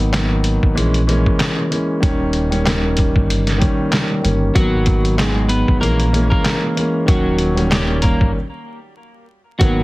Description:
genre	hip hop, boom-bap hip-hop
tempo	95 BPM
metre	4/4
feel	swing 56% on 16ths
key	unclear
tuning	A4 = 440 Hz
part	dark grand piano	accompaniment	0.0-9.8 s	D#3 to C#4	-19 LUFS	equal	none
part	sub bass with octave	bass	0.0-9.8 s	D#1 to A#1	-19 LUFS	equal	none
part	trip hop sampler-style drum kit	drums	0.1-9.8 s	handclaps, hi-hat, kick drum, snare drum	-18 LUFS	equal	none
part	electric guitar at the edge of break-up	melody	4.6-9.8 s	F#3 to B4	-21 LUFS	equal	none
room	light reverb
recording	heavily compressed radio sound, multiband compression, vinyl crackle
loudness	-14 LUFS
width	side -20 dB against mid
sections	0.0-9.6 A section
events	break 0.0-4.6, 8.3-9.6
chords	0.0 G#m7; 0.8 A#m7b5; 2.0 D#7; 4.6 G#m7; 5.8 A#m7b5; 7.1 D#7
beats	0.14 0.77 1.40 | 2.03 2.66 3.29 3.92 | 4.56 5.19 5.82 6.45 | 7.08 7.71 8.35 8.98 | 9.61

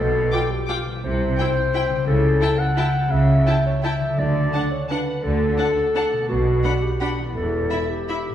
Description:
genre	classical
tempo	171 BPM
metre	3/4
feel	uneven beats, rubato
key	D major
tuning	A4 = 440 Hz
part	dark clarinet	second line	0.0-8.3 s	F#4 to F#5	-23 LUFS	left 2 dB	none
part	concert harp	arpeggios	0.0-8.3 s	E2 to B4	-26 LUFS	left 2 dB	none
part	rich studio double bass section	bass	0.0-7.6 s	E1 to D2	-26 LUFS	right 2 dB	none
part	rich symphonic cello section	bass	0.0-7.6 s	E2 to D3	-26 LUFS	right 2 dB	none
part	rich chamber violin section	melody	0.3-8.2 s	G5 to D6	-33 LUFS	left 2 dB	none
part	rich studio violin section	second line	0.3-8.2 s	E5 to G5	-32 LUFS	left 3 dB	none
part	rich chamber viola section	accompaniment	0.3-8.2 s	D4 to F4	-31 LUFS	right 2 dB	none
part	timpani	percussion	4.2-4.7 s	D3	-28 LUFS	right 2 dB	none
room	wet recital hall reverb, RT60 1.8 s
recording	heard from further back in the room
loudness	-18 LUFS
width	side -10 dB against mid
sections	0.0-8.3 A section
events	none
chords	0.0 G7/B; 1.0 C; 2.1 A7/C#; 4.2 D; 6.3 Bm; 7.4 Em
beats	0.33 0.69 | 1.04 1.39 1.74 | 2.08 2.41 2.77 | 3.11 3.47 3.84 | 4.18 4.53 4.90 | 5.24 5.59 5.96 | 6.30 6.64 7.01 | 7.36 7.71 8.09

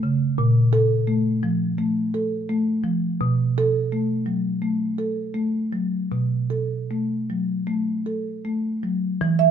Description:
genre	classical, contemporary piece for solo marimba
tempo	76-86 BPM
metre	4/4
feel	rubato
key	unclear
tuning	A4 = 440 Hz
part	marimba with soft mallets	solo	0.0-9.5 s	A#2 to E5	-20 LUFS	equal	none
room	light reverb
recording	close, detailed microphones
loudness	-21 LUFS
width	side -8 dB against mid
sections	0.0-9.2 A section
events	none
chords	0.4 A#5; 3.2 B5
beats	| 0.39 1.10 1.80 2.51 | 3.21 3.92 4.62 5.35 | 6.12 6.91 7.68 8.45 | 9.21

